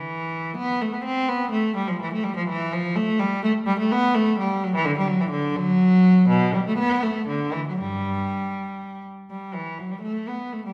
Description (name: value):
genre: classical, baroque-style suite movement for unaccompanied cello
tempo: 83 BPM (dotted quarters)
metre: 6/8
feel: rubato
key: G major from 3.4 s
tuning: A4 = 437 Hz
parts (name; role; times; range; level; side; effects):
- rich cello; solo; 0.0-10.7 s; G2 to C4; -23 LUFS; equal; none
room: wet recital hall reverb, RT60 1.5 s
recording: recorded in a church or concert hall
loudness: -23 LUFS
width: mono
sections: 0.0-9.3 A section; 9.3-10.7 B section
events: none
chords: none